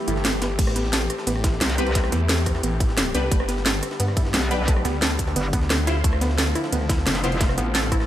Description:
dark technical drum and bass; 176 BPM; 4/4; straight; A minor; A4 = 440 Hz
dark studio string section; sustained chords; 0.0-8.1 s; D3 to G4; -31 LUFS; left 2 dB; sidechain pumping
swell; sound effects; 0.0-0.6 s; -33 LUFS; right 4 dB
warbly dusty pluck; arpeggios; 0.1-8.0 s; A3 to A4; -29 LUFS; right 3 dB; chorus, sidechain pumping, dub echo
snarling distorted saw bass; bass; 0.1-8.1 s; G1 to G2; -25 LUFS; equal; distortion, sidechain pumping
breakbeat sampler-style drum kit; drums; 0.1-8.1 s; ride cymbal, snare drum; -35 LUFS; equal
drum and bass drum kit; drums; 0.1-8.1 s; crash cymbal, hi-hat, rim click, snare drum; -24 LUFS; equal
electronic kick drum; drums; 0.6-8.0 s; -22 LUFS; equal; overdrive
metallic wobble bass; bass; 1.6-2.1, 4.3-7.6 s; F1 to C2; -24 LUFS; equal; chorus
orchestra-hit-like synth stab; stabs; 1.8-8.1 s; C4 to C5; -30 LUFS; left 2 dB; built-in reverb, vintage 12-bit sampler grit, dub echo
light reverb, digital ambience; -19 LUFS; side -12 dB against mid
0.0-8.1 A section
break 0.0-0.6; swell 0.0-0.6
0.0 Em; 0.6 Am7; 3.3 G; 6.0 Dm7
0.25 | 0.59 0.93 1.27 1.61 | 1.95 2.29 2.63 2.98 | 3.32 3.66 4.00 4.34 | 4.68 5.02 5.36 5.70 | 6.04 6.38 6.72 7.07 | 7.41 7.75

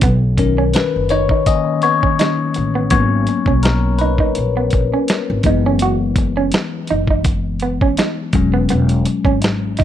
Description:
R&B, neo-soul; 83 BPM; 4/4; swing 53% on 16ths; G# minor; A4 = 440 Hz
electric guitar through a small old amp; second line; 0.0-9.8 s; B3 to F#4; -21 LUFS; right 6 dB; vibrato effect
barky tine electric piano; accompaniment; 0.0-9.8 s; D#3 to D#5; -18 LUFS; left 6 dB; phaser
upright bass; bass; 0.0-9.8 s; E1 to B1; -18 LUFS; equal
dusty soul sampler-style drum kit; drums; 0.0-9.8 s; hi-hat, kick drum, snare drum; -18 LUFS; equal
little or no reverb; dry, close 1970s-style studio recording; -14 LUFS; side -11 dB against mid
0.0-9.8 A section
tine electric piano solo 0.0-9.8
0.0 Bmaj9; 2.9 G#m11; 5.4 F#9sus4; 8.3 E69
| 0.02 0.74 1.46 2.19 | 2.91 3.63 4.36 5.08 | 5.80 6.52 7.25 7.97 | 8.69 9.41

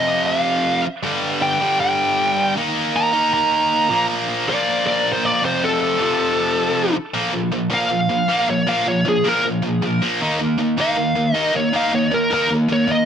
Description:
punk; 157 BPM; 4/4; straight; Bb major; A4 = 440 Hz
high-gain lead guitar; melody; 0.0-13.1 s; Ab4 to Bb5; -19 LUFS; equal; distortion, tape echo
tight distorted guitar; riff; 0.0-13.1 s; F2 to Eb4; -19 LUFS; equal; distortion
light reverb; -16 LUFS; side -8 dB against mid
0.0-7.2 A section; 7.2-13.1 B section
lead electric guitar solo 7.2-13.1
0.0 F5; 1.0 G5; 2.6 Eb5; 3.9 Bb; 5.4 F; 7.2 Bb5; 10.2 Eb5
0.28 0.66 | 1.04 1.43 1.81 2.19 | 2.57 2.95 3.33 3.72 | 4.10 4.48 4.86 5.24 | 5.62 6.00 6.39 6.77 | 7.15 7.53 7.92 8.30 | 8.68 9.06 9.45 9.83 | 10.21 10.59 10.97 11.36 | 11.74 12.12 12.50 12.88

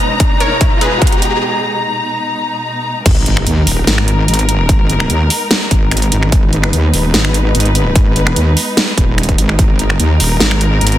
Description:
heavy wobble dubstep; 147 BPM; 4/4; half-time; G# minor; A4 = 440 Hz
wide unison pluck; melody; 0.0-1.3 s; G#4 to D#5; -20 LUFS; equal; dub echo
muted studio string section; sustained chords; 0.0-11.0 s; B2 to A#5; -18 LUFS; left 1 dB; sidechain pumping
dubstep drum kit; drums; 0.0-11.0 s; crash cymbal, finger snaps, hi-hat, snare drum; -16 LUFS; right 1 dB; high-pass filter on snare, high-pass filter on hats, high-pass filter on cymbals
riser and impact; sound effects; 0.0-4.7 s; -21 LUFS; equal
electronic kick drum; drums; 0.2-9.7 s; -13 LUFS; equal; overdrive
wobble bass; bass; 3.1-11.0 s; D#1 to D#2; -13 LUFS; equal; chorus, overdrive
light reverb, digital ambience; dense, heavily limited modern master; -10 LUFS; side -13 dB against mid
0.0-3.1 A section; 3.1-11.0 B section
build-up 0.0-3.1; drum fill 0.0-1.4; riser 0.0-1.4; break 1.4-3.1; drop 3.1-11.0; impact 3.1-4.7
0.0 G#madd9
0.20 0.61 1.02 | 1.43 1.83 2.24 2.65 | 3.06 3.47 3.87 4.28 | 4.69 5.10 5.51 5.92 | 6.32 6.73 7.14 7.55 | 7.96 8.36 8.77 9.18 | 9.59 10.00 10.40 10.81

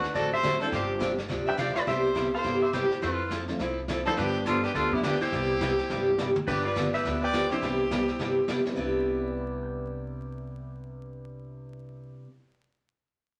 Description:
country, western swing; 209 BPM; 4/4; swing 60% on 8ths; C major; A4 = 439 Hz
clean lap steel guitar; melody; 0.0-8.5 s; B3 to G5; -34 LUFS; equal
clear fiddle; second line; 0.0-8.4 s; E4 to E5; -34 LUFS; equal
upright bass; bass; 0.0-12.1 s; G1 to G2; -41 LUFS; equal
vintage brush drum kit; drums; 0.0-9.0 s; brushed snare drum, crash cymbal, hi-hat, kick drum, snare drum, toms; -40 LUFS; equal
picked steel-string acoustic guitar; accompaniment; 0.2-12.3 s; C3 to A4; -32 LUFS; equal
dark upright piano; accompaniment; 0.6-12.8 s; C3 to G6; -41 LUFS; equal
wet studio reverb, RT60 0.7 s; vinyl crackle; -28 LUFS; mono
0.0-6.5 A section; 6.5-8.8 B section; 8.8-11.1 C section
drum fill 5.9-6.5
0.0 D7; 0.7 G7sus4; 1.9 Cmaj7; 3.0 Fmaj7; 4.2 G7; 5.3 Cmaj7; 6.5 G7; 7.6 Cmaj7
0.15 0.44 | 0.72 1.01 1.30 1.59 | 1.87 2.16 2.45 2.74 | 3.02 3.31 3.60 3.88 | 4.17 4.46 4.75 5.03 | 5.32 5.61 5.89 6.18 | 6.47 6.76 7.04 7.33 | 7.62 7.91 8.20 8.48 | 8.77 9.06 9.35 9.64 | 9.93 10.21 10.50 10.79

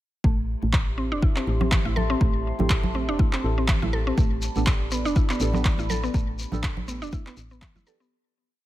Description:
afro house; 122 BPM; 4/4; swing 56% on 16ths; A minor; A4 = 441 Hz
dark analog pad; sustained chords; 0.9-8.1 s; G4 to C6; -35 LUFS; equal; chorus, phaser, vintage 12-bit sampler grit, sidechain pumping
mallet-like synth pluck; arpeggios; 0.2-8.1 s; E3 to A4; -29 LUFS; equal; chorus, sidechain pumping, ping-pong delay
woody FM bass; bass; 0.2-7.8 s; E1 to A1; -28 LUFS; equal; sidechain pumping
electronic kick drum; drums; 0.2-7.7 s; -22 LUFS; equal
congas; percussion; 0.2-7.8 s; -32 LUFS; right 4 dB
electronic handclaps; drums; 0.7-7.7 s; -31 LUFS; equal; overdrive
deep mellow chord stab; stabs; 2.6-8.1 s; B3 to A4; -34 LUFS; right 3 dB; chorus, phaser, sidechain pumping, ping-pong delay
shekere; percussion; 4.2-8.1 s; -38 LUFS; left 3 dB
digital ambience; -21 LUFS; side -15 dB against mid
0.2-8.1 groove
fade-out 5.5-8.1
0.2 Am7; 4.2 Gadd9
| 0.24 0.73 1.23 1.72 | 2.21 2.70 3.19 3.69 | 4.18 4.67 5.16 5.65 | 6.14 6.64 7.13 7.62

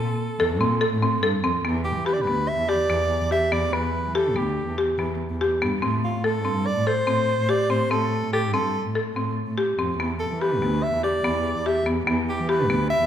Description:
contemporary instrumental, chamber music in an uneven meter; 144 BPM; 5/4; straight; A4 = 440 Hz
clear soprano saxophone; melody; 0.0-13.1 s; F4 to E5; -26 LUFS; equal
dark cello; bass; 0.0-13.1 s; D2 to E3; -26 LUFS; right 1 dB
buzzing marimba with hard mallets; arpeggios; 0.4-13.1 s; B3 to A4; -24 LUFS; left 1 dB
moderate scoring stage reverb, RT60 1.8 s; minimal, uncompressed stereo recording; -21 LUFS; side -10 dB against mid
0.0-1.6 A section; 1.6-13.1 B section
0.0 Fmaj7 (rootless); 1.6 Em7; 5.8 Am7; 10.0 Em7
0.40 0.81 1.23 | 1.65 2.06 2.48 2.90 3.32 | 3.73 4.15 4.57 4.99 5.40 | 5.82 6.24 6.66 7.07 7.49 | 7.91 8.32 8.74 9.16 9.57 | 9.99 10.41 10.83 11.24 11.66 | 12.08 12.49 12.91

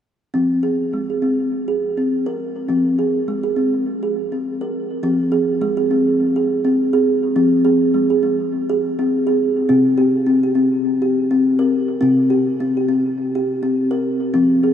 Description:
world meditative, meditative tuned percussion; 103 BPM; 4/4; swing 56% on 16ths; F minor; A4 = 440 Hz
kalimba; solo; 0.3-14.7 s; C3 to Bb4; -16 LUFS; equal; tape echo
wet huge ambient reverb, RT60 8.1 s; dreamy mix soaked in reverb; -16 LUFS; side -9 dB against mid
0.4-5.0 A section; 5.0-14.7 B section
0.4 Fm; 9.7 C5
| 0.36 0.94 1.53 2.11 | 2.70 3.29 3.87 4.45 | 5.04 5.62 6.21 6.79 | 7.37 7.95 8.53 9.12 | 9.70 10.28 10.86 11.44 | 12.02 12.60 13.18 13.76 | 14.34

